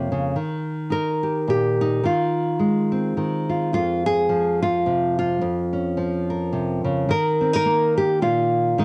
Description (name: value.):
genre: folk, solo fingerstyle acoustic guitar.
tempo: 106 BPM.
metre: 3/4.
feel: swing 56% on 8ths.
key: unclear.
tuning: A4 = 440 Hz.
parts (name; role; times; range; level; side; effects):
nylon-string guitar; solo; 0.0-8.8 s; F2 to Db5; -22 LUFS; equal; cassette tape.
room: moderate spring reverb, RT60 1.1 s, studio reverb.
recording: home recording on cassette.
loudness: -22 LUFS.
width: mono.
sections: 0.0-3.7 A section; 3.7-8.8 A section.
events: none.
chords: 0.3 Eb; 2.0 Ab6/Eb; 3.7 Fm; 5.4 Bbm/F; 7.1 Eb5.